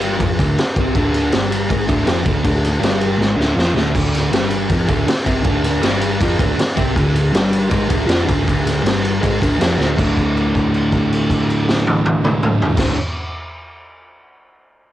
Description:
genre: garage rock duo or trio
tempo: 159 BPM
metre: 4/4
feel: straight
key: D minor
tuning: A4 = 437 Hz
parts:
  - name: fuzz guitar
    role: riff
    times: 0.0-13.0 s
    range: D2 to C4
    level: -18 LUFS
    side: equal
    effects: distortion, cassette tape
  - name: hollow-body short-scale picked electric bass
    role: bass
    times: 0.0-12.9 s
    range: D1 to C2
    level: -24 LUFS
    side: equal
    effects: none
  - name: raw garage drum kit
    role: drums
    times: 0.0-12.9 s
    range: crash cymbal, kick drum, ride cymbal, snare drum, toms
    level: -18 LUFS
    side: equal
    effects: none
room: light reverb, studio reverb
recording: home recording on cassette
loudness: -14 LUFS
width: side -13 dB against mid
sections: 0.0-4.0 A section; 4.0-10.0 A section; 10.0-13.0 B section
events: drum fill 3.2-4.0, 9.8; held note 10.0-12.8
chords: 0.0 Dm; 10.0 D5

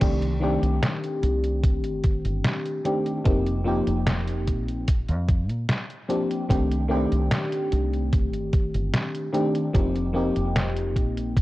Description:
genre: vaporwave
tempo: 74 BPM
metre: 4/4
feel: straight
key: C dorian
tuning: A4 = 439 Hz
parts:
  - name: mellow FM electric piano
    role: accompaniment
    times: 0.0-11.4 s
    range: Eb3 to G4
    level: -25 LUFS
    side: left 1 dB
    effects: lush chorus, cassette tape, tape echo
  - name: deep dub fingered electric bass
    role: bass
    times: 0.0-11.4 s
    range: F1 to Bb2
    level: -26 LUFS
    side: equal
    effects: none
  - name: detuned 8-bit digital drum machine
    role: drums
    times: 0.0-11.4 s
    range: crash cymbal, hi-hat, snare drum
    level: -28 LUFS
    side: equal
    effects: studio reverb
  - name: electronic kick drum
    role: drums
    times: 0.0-11.4 s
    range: none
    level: -22 LUFS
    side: equal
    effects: studio reverb
room: light reverb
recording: worn, warbling old tape, cassette tape, warbly pitch drift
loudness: -22 LUFS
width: side -17 dB against mid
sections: 0.0-11.4 A section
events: none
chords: 0.0 Cm69; 3.3 F9sus4; 4.9 Bb6; 6.5 Cm69; 9.7 F9sus4

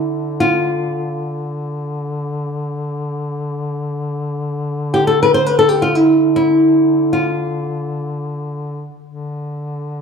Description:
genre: Turkish makam ensemble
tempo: free time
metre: none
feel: none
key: D makam huseyni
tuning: A4 = 439 Hz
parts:
  - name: flamenco guitar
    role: melody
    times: 0.0-8.7 s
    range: E4-30c to C5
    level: -13 LUFS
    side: equal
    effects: none
  - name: mellow duduk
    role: drone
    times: 0.0-10.0 s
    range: D3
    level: -23 LUFS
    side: left 2 dB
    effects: none
room: moderate recital hall reverb, RT60 1.4 s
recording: dark, warm production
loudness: -15 LUFS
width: side -6 dB against mid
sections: 0.0-10.0 A section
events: none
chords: none

